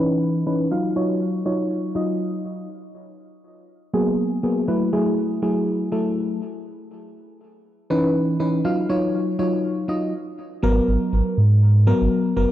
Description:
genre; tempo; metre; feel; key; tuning
deep house; 121 BPM; 4/4; swing 58% on 16ths; G# minor; A4 = 442 Hz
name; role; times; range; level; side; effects
mellow FM electric piano; stabs; 0.0-12.5 s; E3 to E#5; -21 LUFS; equal; chorus, cassette tape, low-pass filter, tape echo
sub bass with octave; bass; 10.6-12.5 s; F#1 to G#2; -16 LUFS; right 1 dB; none
room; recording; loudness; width
moderate lush hall reverb, RT60 2.4 s; low-pass filter; -19 LUFS; side -12 dB against mid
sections
0.0-10.6 A section; 10.6-12.5 B section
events
filter sweep on FM electric piano 0.0-10.6; filter sweep 0.0-10.6; stop 10.1-10.6; drop 10.6-12.5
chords
0.0 C#m9; 0.7 D#m9; 2.7 G#m9; 4.7 F#m9; 6.4 C#m9; 8.6 D#m9; 10.6 G#m9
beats
0.22 | 0.71 1.21 1.71 2.20 | 2.70 3.19 3.69 4.18 | 4.68 5.18 5.67 6.17 | 6.67 7.16 7.66 8.15 | 8.65 9.14 9.64 10.14 | 10.63 11.13 11.62 12.12

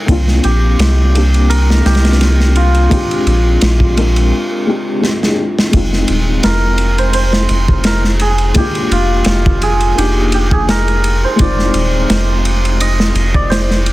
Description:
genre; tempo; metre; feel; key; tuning
trip hop; 85 BPM; 4/4; swing 55% on 16ths; F dorian; A4 = 439 Hz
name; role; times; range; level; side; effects
cimbalom; melody; 0.0-13.9 s; F4 to Eb5; -18 LUFS; right 1 dB; dub echo
felt-muted upright piano; accompaniment; 0.0-13.9 s; Ab3 to Bb4; -19 LUFS; left 2 dB; tremolo, tape echo
soft dub sub bass; bass; 0.1-13.9 s; Eb1 to C2; -13 LUFS; equal; none
crunchy breakbeat drum kit; drums; 0.1-13.9 s; kick drum, ride cymbal, snare drum; -16 LUFS; equal; none
room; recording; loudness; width
little or no reverb; dense, heavily limited modern master; -10 LUFS; side -17 dB against mid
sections
0.0-5.7 A section; 5.7-13.9 B section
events
filter sweep on felt piano 0.0-5.7; break 4.3-5.7; drum fill 5.0-5.7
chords
0.1 C9sus4; 2.9 Bb13; 5.7 Fm7; 8.6 Bb7/F; 10.0 Ebmaj7/F; 11.4 Fm7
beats
| 0.09 0.79 1.50 2.20 | 2.91 3.62 4.32 5.03 | 5.73 6.44 7.14 7.85 | 8.56 9.26 9.97 10.67 | 11.38 12.09 12.79 13.50

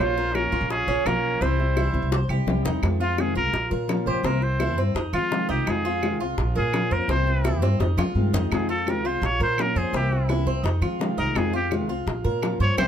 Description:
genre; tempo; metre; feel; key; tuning
latin, Cuban son and guajira; 169 BPM; 4/4; straight; F minor; A4 = 444 Hz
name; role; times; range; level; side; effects
trumpet with straight mute; melody; 0.0-12.9 s; F4 to Db5; -26 LUFS; equal; none
bright trumpet; second line; 0.0-2.1 s; Db4 to F4; -34 LUFS; right 4 dB; none
nylon-string guitar; accompaniment; 0.0-12.9 s; C3 to F4; -28 LUFS; left 4 dB; none
Cuban tres; arpeggios; 0.0-12.9 s; Bb3 to C5; -30 LUFS; right 4 dB; none
upright bass; bass; 0.0-12.9 s; Bb1 to F3; -25 LUFS; equal; none
bongos; percussion; 0.0-12.9 s; none; -30 LUFS; left 3 dB; none
claves; percussion; 0.3-12.9 s; none; -36 LUFS; right 7 dB; none
room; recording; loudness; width
light reverb; close, detailed microphones; -21 LUFS; side -9 dB against mid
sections
0.0-2.8 A section; 2.8-12.9 B section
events
drum fill 2.1-2.8, 7.4-8.5; muted trumpet solo 2.8-12.9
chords
0.0 Bbm; 1.4 C; 2.8 Fm7; 3.5 Bbm; 4.2 C7; 5.0 Fm7; 6.4 Bbm; 7.1 C7; 7.8 Fm7; 9.2 Bbm; 9.9 C7; 10.6 Fm7; 12.1 Bbm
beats
0.34 0.70 1.05 | 1.41 1.76 2.12 2.47 | 2.83 3.18 3.54 3.89 | 4.25 4.60 4.96 5.31 | 5.67 6.02 6.38 6.73 | 7.09 7.45 7.80 8.16 | 8.51 8.87 9.22 9.58 | 9.93 10.29 10.64 11.00 | 11.36 11.71 12.07 12.42 | 12.78

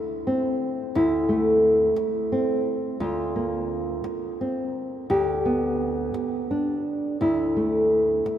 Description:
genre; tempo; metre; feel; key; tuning
folk, solo fingerstyle acoustic guitar; 57 BPM (dotted quarters); 6/8; rubato; unclear; A4 = 440 Hz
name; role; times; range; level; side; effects
nylon-string guitar; solo; 0.0-8.4 s; D2 to G4; -22 LUFS; equal; none
room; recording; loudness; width
wet cathedral reverb, RT60 5.9 s; in a vast, echoing space; -22 LUFS; side -10 dB against mid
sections
0.0-8.4 A section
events
none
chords
0.0 C6; 3.0 Bbadd9/D; 5.1 G/D; 7.2 C6/D (rootless)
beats
| 0.95 1.98 | 3.01 4.05 | 5.09 6.15 | 7.20 8.26

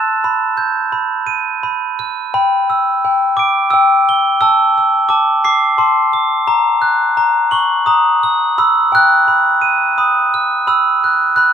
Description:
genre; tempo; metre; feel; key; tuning
children's music, lullaby; 86 BPM; 3/4; straight; E minor; A4 = 440 Hz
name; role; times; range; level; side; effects
glockenspiel with soft plastic mallets; solo; 0.0-11.5 s; G5 to B7; -11 LUFS; equal; none
room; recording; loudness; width
light reverb; minimal, uncompressed stereo recording; -11 LUFS; side -8 dB against mid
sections
0.0-2.3 A section; 2.3-11.5 B section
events
none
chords
0.2 Em/B; 0.9 B; 2.3 Em7; 4.4 Am; 6.5 F#; 8.6 Em/B; 9.3 B; 10.7 Esus2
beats
| 0.23 0.93 1.64 | 2.34 3.03 3.72 | 4.41 5.10 5.79 | 6.47 7.17 7.87 | 8.57 9.26 9.96 | 10.67 11.37

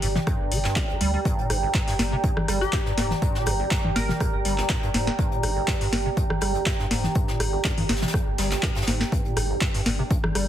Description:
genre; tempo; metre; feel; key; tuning
acid house; 122 BPM; 4/4; straight; G phrygian; A4 = 439 Hz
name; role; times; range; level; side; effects
acid bass, square; riff; 0.0-10.5 s; G1 to G3; -30 LUFS; equal; overdrive, ensemble chorus, cassette tape, sidechain pumping
warm sub bass; bass; 0.0-10.5 s; F1 to D2; -28 LUFS; equal; sidechain pumping
booming analog drum machine; drums; 0.0-10.5 s; handclaps, hi-hat, rim click, snare drum, toms; -27 LUFS; left 1 dB; none
jazz brush drum kit; drums; 0.0-10.5 s; hi-hat, snare drum; -36 LUFS; left 2 dB; high-pass filter on hats, high-pass filter on snare, high-pass filter on room
deep dark ambient pad; texture; 0.0-10.5 s; G4 to Bb5; -29 LUFS; right 3 dB; chorus, built-in reverb, sidechain pumping
electronic kick drum; drums; 0.3-10.2 s; none; -26 LUFS; equal; none
glassy wavetable pluck; melody; 2.6-4.7 s; G4 to Bb4; -34 LUFS; left 2 dB; chorus, dub echo
room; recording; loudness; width
light reverb, digital ambience; heavily compressed radio sound, multiband compression; -22 LUFS; side -11 dB against mid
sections
0.0-10.5 A section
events
none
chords
0.0 Gm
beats
0.27 0.76 | 1.25 1.75 2.24 2.73 | 3.22 3.71 4.21 4.70 | 5.19 5.68 6.17 6.66 | 7.16 7.65 8.14 8.63 | 9.12 9.61 10.11

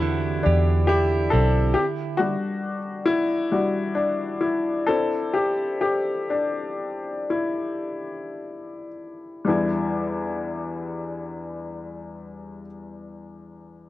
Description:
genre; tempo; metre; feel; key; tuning
pop; 53-69 BPM; 4/4; straight; E minor; A4 = 444 Hz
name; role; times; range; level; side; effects
clear upright piano; accompaniment; 0.0-13.9 s; E2 to A4; -24 LUFS; left 2 dB; none
direct-recorded clean electric guitar; arpeggios; 0.0-2.4 s; D3 to G4; -28 LUFS; right 9 dB; wide subtle chorus
vintage muted fingered electric bass; bass; 0.0-1.7 s; B1 to E2; -21 LUFS; right 1 dB; none
downlifter; sound effects; 0.0-1.8 s; none; -50 LUFS; right 3 dB; none
room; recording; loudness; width
little or no reverb; dry, close 1970s-style studio recording; -22 LUFS; side -15 dB against mid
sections
0.0-9.5 A section; 9.5-13.9 B section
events
upright piano solo 0.0-9.5; slowing down 1.8-9.5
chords
0.0 Cadd9/E; 1.8 Em7; 4.9 Cadd9; 9.5 Em7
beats
0.02 0.89 | 1.76 2.63 3.52 4.42 | 5.35 6.31 7.31 8.36 | 9.46 10.60 11.74 12.88

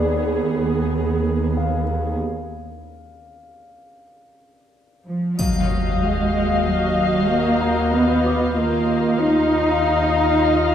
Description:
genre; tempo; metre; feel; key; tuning
cinematic, suspense film score; 94 BPM; 5/4; straight; unclear; A4 = 441 Hz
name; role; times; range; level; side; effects
muted studio viola section; accompaniment; 0.0-10.7 s; Cb4 to Eb5; -23 LUFS; right 1 dB; none
muted studio cello section; bass; 0.0-10.7 s; Eb2 to Eb4; -21 LUFS; right 1 dB; none
muted studio double bass section; bass; 0.0-10.7 s; Eb2; -25 LUFS; right 2 dB; none
warm concert grand piano; texture; 0.0-10.7 s; D5 to D6; -33 LUFS; left 4 dB; none
muted studio violin section; melody; 5.4-10.7 s; F5; -25 LUFS; left 8 dB; none
triangle; percussion; 5.4-6.6 s; none; -35 LUFS; left 2 dB; none
impact; sound effects; 5.4-8.6 s; none; -27 LUFS; left 1 dB; none
muted studio violin section; texture; 5.4-10.7 s; F6 to G6; -35 LUFS; left 1 dB; none
room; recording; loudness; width
moderate scoring stage reverb, RT60 1.8 s; none; -17 LUFS; side -9 dB against mid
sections
0.0-5.4 A section; 5.4-10.7 B section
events
break 2.2-5.4; impact 5.4-8.6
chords
0.0 Abm/Eb; 5.4 Ebmadd9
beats
0.28 0.92 1.56 | 2.20 2.84 3.48 4.11 4.75 | 5.39 6.03 6.67 7.30 7.94 | 8.58 9.22 9.86 10.50

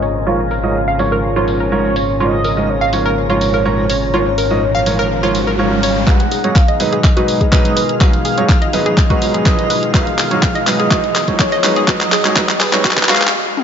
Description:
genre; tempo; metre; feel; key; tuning
progressive house; 124 BPM; 4/4; straight; G# dorian; A4 = 440 Hz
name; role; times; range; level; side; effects
expressive synth lead; melody; 0.0-13.3 s; B4 to F#5; -20 LUFS; equal; wide subtle chorus, ping-pong delay
lush unison pad; sustained chords; 0.0-13.3 s; A#2 to G#4; -22 LUFS; left 1 dB; chorus, sidechain pumping
glassy wavetable pluck; arpeggios; 0.0-13.2 s; E#4 to E#5; -21 LUFS; equal; chorus, sidechain pumping, ping-pong delay
dark detuned saw bass; bass; 0.0-6.0 s; G#1; -22 LUFS; equal; sidechain pumping
house drum kit; drums; 0.0-13.6 s; handclaps, hi-hat, toms; -18 LUFS; left 1 dB; sidechain pumping on hats, low-pass filter on hats, low-pass filter on snare, sidechain pumping on toms, low-pass filter on toms, low-pass filter on room
twinkling granular texture; texture; 0.0-13.3 s; E#3 to E#6; -29 LUFS; left 1 dB; built-in reverb, sidechain pumping
clear baby grand piano; stabs; 0.3-13.2 s; G#2 to D#5; -20 LUFS; right 3 dB; sidechain pumping, low-pass filter, ping-pong delay
riser; sound effects; 4.0-13.3 s; none; -25 LUFS; right 1 dB; none
electronic kick drum; drums; 6.1-13.1 s; none; -13 LUFS; equal; none
room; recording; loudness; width
light reverb; high-pass filter, low-pass filter, nothing above 7.6 kHz; -12 LUFS; side -8 dB against mid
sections
0.0-6.1 A section; 6.1-13.6 B section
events
filter sweep on synth arpeggio sound 0.0-6.1, 6.1-13.6; filter sweep 0.0-6.1, 6.1-13.6; riser 4.0-6.1, 6.1-13.3; build-up 6.1-13.6; drum fill 6.1-13.3; stop 13.3-13.6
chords
0.0 A#m/G#; 6.1 G#m7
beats
| 0.27 0.75 1.24 1.72 | 2.20 2.69 3.17 3.65 | 4.14 4.62 5.11 5.59 | 6.07 6.56 7.04 7.53 | 8.01 8.49 8.98 9.46 | 9.94 10.43 10.91 11.40 | 11.88 12.36 12.85 13.33

